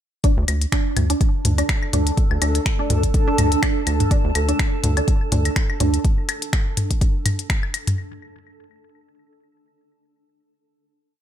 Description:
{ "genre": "minimal techno", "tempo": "124 BPM", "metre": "4/4", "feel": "swing 55% on 16ths", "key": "unclear", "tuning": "A4 = 440 Hz", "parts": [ { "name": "resonant blip pluck", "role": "riff", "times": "0.2-5.9 s", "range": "D4", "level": "-27 LUFS", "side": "right 2 dB", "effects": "wide subtle chorus, sidechain pumping, ping-pong delay" }, { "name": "electronic kick drum", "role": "drums", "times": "0.2-7.6 s", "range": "none", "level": "-20 LUFS", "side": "equal", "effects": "studio reverb" }, { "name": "minimal click drum kit", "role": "drums", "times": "0.2-8.0 s", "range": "finger snaps, hi-hat", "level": "-26 LUFS", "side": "left 2 dB", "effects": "studio reverb" }, { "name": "granular cloud pad", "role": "texture", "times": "1.0-6.0 s", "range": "D4 to A5", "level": "-26 LUFS", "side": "right 2 dB", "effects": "built-in reverb, sidechain pumping" }, { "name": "rubbery square bass", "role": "bass", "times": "0.4-6.0 s", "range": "D2", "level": "-20 LUFS", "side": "equal", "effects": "sidechain pumping" }, { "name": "electronic claves, toms and woodblock", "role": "percussion", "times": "0.5-8.0 s", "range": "none", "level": "-25 LUFS", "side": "left 1 dB", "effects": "studio reverb" } ], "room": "digital ambience", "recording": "none", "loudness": "-18 LUFS", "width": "side -10 dB against mid", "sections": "0.2-8.0 groove", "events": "none", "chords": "0.2 D5" }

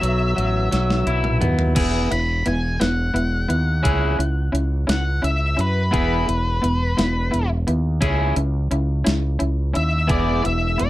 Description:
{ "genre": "indie rock", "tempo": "58 BPM (dotted quarters)", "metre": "6/8", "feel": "straight", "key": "E major", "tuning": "A4 = 440 Hz", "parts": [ { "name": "octave-fuzz lead guitar", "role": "melody", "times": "0.0-10.9 s", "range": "B4 to B5", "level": "-25 LUFS", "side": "left 1 dB", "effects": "distortion, slapback echo" }, { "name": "electric guitar at the edge of break-up", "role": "riff", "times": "0.0-10.9 s", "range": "F#3 to G#4", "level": "-23 LUFS", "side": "equal", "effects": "none" }, { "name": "growling fingered electric bass", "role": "bass", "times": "0.0-10.9 s", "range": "E1 to F#2", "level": "-21 LUFS", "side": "equal", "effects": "overdrive" }, { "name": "crisp 8-bit digital drum machine", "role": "drums", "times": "0.0-10.9 s", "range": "crash cymbal, hi-hat, kick drum, snare drum, toms", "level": "-24 LUFS", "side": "equal", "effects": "overdrive" }, { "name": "ensemble organ-string", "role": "sustained chords", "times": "10.1-10.9 s", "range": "B2 to E4", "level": "-30 LUFS", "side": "equal", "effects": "ensemble chorus" } ], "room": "little or no reverb", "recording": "dark, warm production", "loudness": "-18 LUFS", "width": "side -16 dB against mid", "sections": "0.0-1.8 A section; 1.8-10.9 B section", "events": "drum fill 0.7-1.8; lead electric guitar solo 1.8-10.9", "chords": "0.0 Bsus4; 1.8 E; 3.8 C#m; 5.9 E; 8.0 C#m; 10.1 E" }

